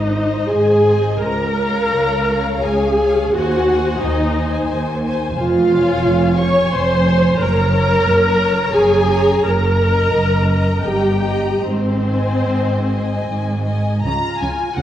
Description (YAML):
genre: classical, slow romantic movement for string orchestra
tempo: 72-92 BPM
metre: 3/4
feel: rubato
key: Db major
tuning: A4 = 440 Hz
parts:
  - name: warm studio violin section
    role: melody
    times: 0.0-14.8 s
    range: C5 to Db6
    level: -26 LUFS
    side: left 3 dB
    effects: none
  - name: rich studio violin section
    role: second line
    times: 0.0-14.8 s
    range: C5 to Bb5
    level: -25 LUFS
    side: left 3 dB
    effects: none
  - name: dark studio viola section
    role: accompaniment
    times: 0.0-14.8 s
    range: C4 to Db5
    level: -17 LUFS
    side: equal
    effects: none
  - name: warm studio cello section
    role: bass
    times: 0.0-14.8 s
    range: Db2 to Db3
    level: -21 LUFS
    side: right 1 dB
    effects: none
  - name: warm studio double bass section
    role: bass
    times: 0.0-14.8 s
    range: F1 to Eb2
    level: -22 LUFS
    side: right 1 dB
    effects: none
room: wet scoring stage reverb, RT60 1.5 s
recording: worn, warbling old tape, cassette tape, warbly pitch drift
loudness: -14 LUFS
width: side -11 dB against mid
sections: 0.0-14.0 A section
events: none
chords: 0.0 Ab; 1.2 Db; 3.3 Ab7/Eb; 5.4 Db/F; 7.4 Gb; 9.4 Ebm/Gb; 10.8 Eb/G; 11.6 Ab; 14.0 Db